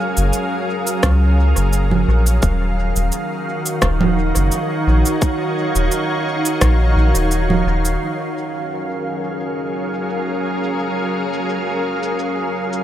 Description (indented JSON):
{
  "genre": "ambient dub",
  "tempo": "86 BPM",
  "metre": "4/4",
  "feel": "swing 54% on 16ths",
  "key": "unclear",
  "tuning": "A4 = 441 Hz",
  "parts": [
    { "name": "soft additive organ-like pad", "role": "sustained chords", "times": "0.0-12.8 s", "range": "Eb3 to F5", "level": "-20 LUFS", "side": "equal", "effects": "ensemble chorus, built-in reverb" },
    { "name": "bubbling stepped-filter texture", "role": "texture", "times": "0.0-12.8 s", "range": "Bb4 to F5", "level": "-30 LUFS", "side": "equal", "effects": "chorus, built-in reverb" },
    { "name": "soft dub sub bass", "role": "bass", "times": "0.2-8.0 s", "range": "Eb1 to Db2", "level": "-16 LUFS", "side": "equal", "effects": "tube saturation" },
    { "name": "electronic shaker, rim click and congas", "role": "drums", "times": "0.2-12.8 s", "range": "none", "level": "-21 LUFS", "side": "right 4 dB", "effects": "overdrive, low-pass filter on snare, low-pass filter on perc, low-pass filter on room, dub echo" },
    { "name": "electronic kick drum", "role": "drums", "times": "1.0-6.8 s", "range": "none", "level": "-18 LUFS", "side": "equal", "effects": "overdrive" }
  ],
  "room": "light reverb, digital ambience",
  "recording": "none",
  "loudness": "-16 LUFS",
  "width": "side -11 dB against mid",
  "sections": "0.0-8.0 A section; 8.0-12.8 B section",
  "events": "filter sweep on drum 8.0-12.8",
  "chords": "0.0 Gbmaj7; 2.4 Ebm9; 8.0 Gbmaj7"
}